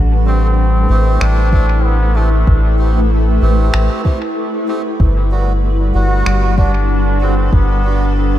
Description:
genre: ambient dub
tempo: 95 BPM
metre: 4/4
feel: swing 55% on 16ths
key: A dorian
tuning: A4 = 435 Hz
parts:
  - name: granular cloud pad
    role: sustained chords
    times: 0.0-8.4 s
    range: G3 to B4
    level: -20 LUFS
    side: equal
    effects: built-in reverb, wide subtle chorus
  - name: soft dub sub bass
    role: bass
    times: 0.0-8.4 s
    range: G1 to A1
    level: -13 LUFS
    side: equal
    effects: none
  - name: trombone with straight mute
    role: melody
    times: 0.3-8.4 s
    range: A3 to F#4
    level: -23 LUFS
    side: equal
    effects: dub echo
  - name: melodica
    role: stabs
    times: 0.3-8.1 s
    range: G3 to G4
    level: -24 LUFS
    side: right 3 dB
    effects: dub echo
  - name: electronic finger snaps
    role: drums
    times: 1.2-6.4 s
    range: none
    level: -27 LUFS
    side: equal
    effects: dub echo
  - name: electronic kick drum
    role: drums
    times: 1.5-7.7 s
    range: none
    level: -14 LUFS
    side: equal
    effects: none
room: light reverb, studio reverb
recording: none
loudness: -11 LUFS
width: side -12 dB against mid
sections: 0.0-8.4 A section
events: none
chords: 0.0 Am7; 5.0 Gmaj7

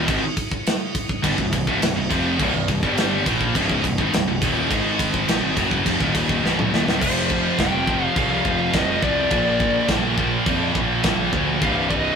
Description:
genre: heavy metal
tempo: 104 BPM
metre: 4/4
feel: straight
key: C minor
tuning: A4 = 440 Hz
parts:
  - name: scooped high-gain guitar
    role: riff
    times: 0.0-12.2 s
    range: C2 to Bb3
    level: -21 LUFS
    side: equal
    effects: distortion
  - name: fuzz picked electric bass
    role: bass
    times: 0.0-12.1 s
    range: C1 to F2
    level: -26 LUFS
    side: equal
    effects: overdrive
  - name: tight metal drum kit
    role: drums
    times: 0.1-12.0 s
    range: crash cymbal, kick drum, ride cymbal, snare drum, toms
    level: -23 LUFS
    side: right 1 dB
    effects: none
  - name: high-gain lead guitar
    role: melody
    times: 7.0-12.2 s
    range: C5 to G5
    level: -24 LUFS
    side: left 1 dB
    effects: distortion
room: moderate studio reverb, RT60 0.6 s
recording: rough rehearsal-room recording, warm saturation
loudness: -18 LUFS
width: side -6 dB against mid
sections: 0.0-7.0 A section; 7.0-12.2 B section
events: drum fill 6.4-7.0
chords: 0.0 Cm; 4.7 Ab5; 5.3 Cm; 7.0 F5; 9.3 Bb; 11.6 Cm

